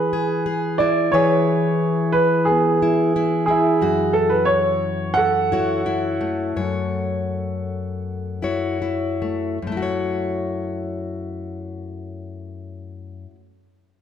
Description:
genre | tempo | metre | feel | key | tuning
acoustic folk-pop ballad | 73-90 BPM | 4/4 | straight | F# minor | A4 = 441 Hz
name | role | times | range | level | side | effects
warm grand piano | melody | 0.0-8.8 s | B3 to F#5 | -20 LUFS | right 3 dB | slapback echo
fingerpicked plugged-in steel-string acoustic guitar | accompaniment | 0.0-13.5 s | F#2 to C#5 | -23 LUFS | left 4 dB | none
room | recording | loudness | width
moderate scoring stage reverb, RT60 2.0 s | none | -18 LUFS | side -8 dB against mid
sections
0.0-9.6 A section; 9.6-12.9 B section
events
slowing down 3.8-9.6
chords
0.0 E; 3.8 F#m7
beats
0.47 | 1.15 1.81 2.48 3.15 | 3.81 4.49 5.16 5.85 | 6.56 7.28 8.03 8.81 | 9.62 10.44 11.24 12.05

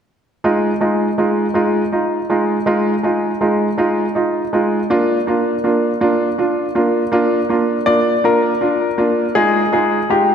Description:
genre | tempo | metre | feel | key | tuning
pop | 54 BPM (dotted quarters) | 6/8 | straight | F minor | A4 = 441 Hz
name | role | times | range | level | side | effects
bright upright piano | accompaniment | 0.4-10.3 s | Ab3 to F4 | -15 LUFS | right 1 dB | none
bright grand piano | melody | 7.9-10.3 s | G4 to D5 | -16 LUFS | left 3 dB | ping-pong delay
room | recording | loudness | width
wet concert hall reverb, RT60 1.9 s | none | -14 LUFS | side -7 dB against mid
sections
0.4-9.4 A section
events
none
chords
0.4 Fm7; 4.9 Bb; 9.4 Fm7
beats
| 0.45 1.56 | 2.67 3.79 | 4.90 6.01 | 7.13 8.24 | 9.35

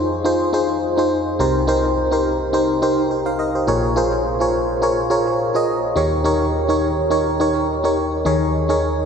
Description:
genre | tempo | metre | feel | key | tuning
pop | 105 BPM | 4/4 | swing 55% on 16ths | unclear | A4 = 440 Hz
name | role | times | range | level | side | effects
FM electric piano | solo | 0.0-9.1 s | Bb1 to F5 | -16 LUFS | equal | chorus, tape echo
room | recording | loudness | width
wet cathedral reverb, RT60 7.0 s | dreamy mix soaked in reverb | -16 LUFS | side -6 dB against mid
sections
0.0-8.3 A section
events
none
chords
0.0 Fm7; 1.4 Cm7; 3.7 Bbm7; 6.0 Eb7; 8.3 Eb7sus4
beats
0.26 0.83 | 1.40 1.97 2.54 3.11 | 3.68 4.25 4.83 5.40 | 5.97 6.54 7.11 7.68 | 8.26 8.83

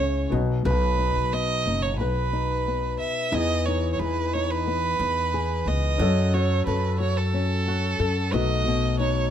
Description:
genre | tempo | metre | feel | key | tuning
acoustic pop | 90 BPM | 4/4 | straight | E major | A4 = 440 Hz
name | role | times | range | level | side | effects
warm violin | melody | 0.0-9.3 s | A4 to E5 | -27 LUFS | right 5 dB | plate reverb
felt-muted upright piano | accompaniment | 0.0-9.3 s | G#3 to D#5 | -33 LUFS | left 2 dB | none
flamenco guitar | accompaniment | 0.0-9.3 s | B2 to B4 | -28 LUFS | left 6 dB | none
upright bass | bass | 0.0-9.3 s | F#1 to F#2 | -26 LUFS | equal | none
room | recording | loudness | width
light reverb | none | -22 LUFS | side -9 dB against mid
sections
0.0-3.3 A section; 3.3-9.3 B section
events
none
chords
0.3 B; 3.3 Emaj7; 6.0 F#m; 8.3 B7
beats
| 0.65 1.32 1.99 2.66 | 3.33 3.99 4.66 5.33 | 6.00 6.66 7.33 8.00 | 8.66

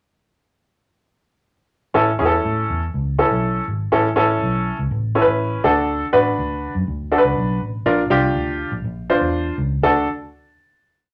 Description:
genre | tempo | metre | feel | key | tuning
uptempo 1960s-style soul | 122 BPM | 4/4 | straight | D major | A4 = 440 Hz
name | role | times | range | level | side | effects
clear baby grand piano | accompaniment | 1.9-10.1 s | C#4 to C5 | -20 LUFS | equal | none
vintage muted fingered electric bass | bass | 1.9-10.1 s | G#1 to A2 | -26 LUFS | equal | none
room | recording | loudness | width
wet club reverb, RT60 0.5 s | none | -19 LUFS | mono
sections
1.9-9.8 verse; 9.8-11.1 final chord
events
none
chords
1.9 A; 5.7 D; 7.9 Bb; 9.8 D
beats
| 1.95 2.44 2.94 3.43 | 3.92 4.42 4.91 5.40 | 5.90 6.39 6.88 7.37 | 7.87 8.36 8.85 9.34 | 9.84

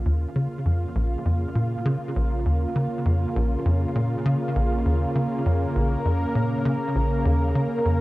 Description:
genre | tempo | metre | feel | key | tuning
ambient, sequencer-driven space music | 100 BPM | 4/4 | straight | Bb minor | A4 = 440 Hz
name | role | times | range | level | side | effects
lush unison pad | sustained chords | 0.0-8.0 s | Db3 to Bb4 | -26 LUFS | equal | chorus, cassette tape
tight sequencer bass | riff | 0.0-8.0 s | Bb1 to Db3 | -23 LUFS | equal | analog chorus, cassette tape, analog delay
room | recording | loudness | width
moderate spring reverb, RT60 1.7 s | home recording on cassette | -21 LUFS | side -18 dB against mid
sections
0.0-8.0 A section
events
fade-in on analog synth pad 0.0-8.0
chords
0.0 Bbm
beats
0.35 | 0.95 1.55 2.15 2.75 | 3.35 3.95 4.55 5.15 | 5.75 6.35 6.95 7.55

